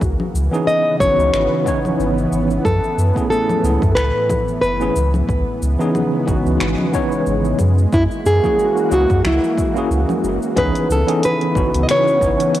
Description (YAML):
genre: sunset chillout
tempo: 91 BPM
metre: 4/4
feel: swing 56% on 16ths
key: C# minor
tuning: A4 = 440 Hz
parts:
  - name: lush unison pad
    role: sustained chords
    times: 0.0-12.6 s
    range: A2 to F#4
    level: -23 LUFS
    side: equal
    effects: chorus, cassette tape
  - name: warm sub bass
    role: bass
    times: 0.0-12.4 s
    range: F#1 to F#2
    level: -18 LUFS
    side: equal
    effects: none
  - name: deep house drum kit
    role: drums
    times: 0.0-12.6 s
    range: cabasa, congas, finger snaps, hi-hat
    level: -27 LUFS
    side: left 2 dB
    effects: overdrive, cassette tape
  - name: electronic kick drum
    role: drums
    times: 0.0-12.4 s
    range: none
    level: -23 LUFS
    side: equal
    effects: overdrive, cassette tape
  - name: tine electric piano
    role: accompaniment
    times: 0.5-12.6 s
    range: E3 to C#5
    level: -21 LUFS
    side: equal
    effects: overdrive, fast stereo tremolo, auto-pan, low-pass filter, cassette tape, analog delay
  - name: nylon-string guitar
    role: melody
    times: 0.7-12.6 s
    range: E4 to D#5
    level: -18 LUFS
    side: equal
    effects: cassette tape, analog delay
room: moderate lush hall reverb, RT60 2.2 s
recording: home recording on cassette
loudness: -14 LUFS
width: side -13 dB against mid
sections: 0.0-10.6 A section; 10.6-12.6 B section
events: none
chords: 0.0 C#m7; 2.7 F#m11; 5.3 C#m7; 7.6 F#9; 10.6 C#m7